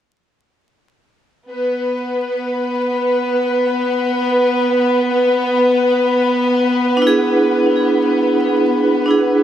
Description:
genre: trip hop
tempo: free time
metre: none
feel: none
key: unclear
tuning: A4 = 442 Hz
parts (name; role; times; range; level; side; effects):
- rich chamber violin section; sustained chords; 1.5-9.4 s; B3 to B4; -16 LUFS; left 1 dB; none
- wind-like tuned noise texture; texture; 2.3-9.4 s; B3 to B4; -24 LUFS; equal; built-in reverb
- vibraphone with hard mallets; accompaniment; 7.0-9.4 s; D4 to G#4; -14 LUFS; right 2 dB; tremolo, tape echo
room: light reverb, small room ambience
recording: echo-heavy mix, vinyl crackle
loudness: -14 LUFS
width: side -10 dB against mid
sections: 1.5-9.4 A section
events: none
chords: 1.5 N.C.; 7.0 E7

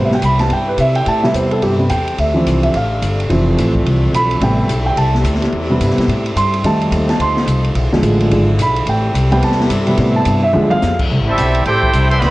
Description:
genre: jazz, big band swing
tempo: 215 BPM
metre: 4/4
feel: swing 62% on 8ths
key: A minor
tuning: A4 = 439 Hz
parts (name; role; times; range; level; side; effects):
- warm concert grand piano; accompaniment; 0.0-11.0 s; C3 to C6; -15 LUFS; right 1 dB; none
- warm saxophone section; sustained chords; 0.0-12.3 s; C3 to E4; -23 LUFS; left 1 dB; none
- upright bass; bass; 0.0-12.3 s; E1 to C3; -16 LUFS; equal; none
- open jazz drum kit; drums; 0.1-12.3 s; crash cymbal, hi-hat, kick drum, ride cymbal, snare drum, toms; -23 LUFS; equal; none
- clear trumpet section; melody; 11.3-12.3 s; C4 to C6; -16 LUFS; right 1 dB; none
- muted trombone section; second line; 11.3-12.3 s; E3 to G4; -20 LUFS; right 2 dB; analog delay
room: moderate spring reverb, RT60 2.0 s, studio ambience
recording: worn, warbling old tape, cassette tape, warbly pitch drift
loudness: -12 LUFS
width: side -18 dB against mid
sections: 0.0-11.1 A section; 11.1-12.3 B section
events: grand piano solo 0.0-11.1; drum fill 10.5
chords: 0.0 Am7; 2.2 Dm7; 4.4 Am7; 6.6 F7; 7.8 E7b9; 8.9 Am7; 10.5 E7b9; 11.1 Am7

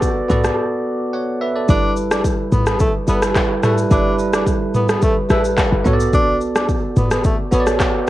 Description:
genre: afrobeats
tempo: 108 BPM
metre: 4/4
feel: straight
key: unclear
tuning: A4 = 440 Hz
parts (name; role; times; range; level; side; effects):
- bell-like tine electric piano; accompaniment; 0.0-8.1 s; G3 to F#5; -19 LUFS; right 1 dB; lush chorus, cassette tape, plate reverb
- short 808-style bass; bass; 0.0-7.8 s; F#1 to B1; -20 LUFS; equal; none
- afro-pop drum kit; drums; 0.0-7.9 s; handclaps, kick drum, rim click, shaker, toms; -18 LUFS; equal; cassette tape
- breathy tenor saxophone; melody; 1.7-7.7 s; A3 to E4; -22 LUFS; equal; cassette tape
room: light reverb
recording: home recording on cassette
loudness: -14 LUFS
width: side -15 dB against mid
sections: 0.0-1.7 A section; 1.7-8.1 B section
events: break 0.6-1.7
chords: 0.0 Bm7; 1.7 G69; 5.9 Bm7

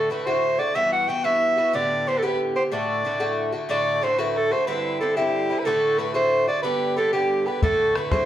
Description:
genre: celtic folk, Celtic jig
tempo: 122 BPM (dotted quarters)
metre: 6/8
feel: straight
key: D mixolydian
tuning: A4 = 440 Hz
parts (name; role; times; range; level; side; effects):
- warm soprano saxophone; melody; 0.0-8.3 s; G4 to G5; -22 LUFS; right 1 dB; plate reverb
- Irish bouzouki; accompaniment; 0.0-8.3 s; G2 to G4; -25 LUFS; left 2 dB; none
- bodhran; percussion; 7.6-8.2 s; none; -24 LUFS; left 2 dB; none
room: wet small room reverb, RT60 0.6 s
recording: heard from further back in the room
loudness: -20 LUFS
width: side -11 dB against mid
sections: 0.0-3.7 A section; 3.7-8.3 A section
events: none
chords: 0.0 D; 0.7 Emadd9; 1.7 Gadd9; 2.7 D; 4.7 Cadd9; 5.7 D; 6.6 G; 7.6 D

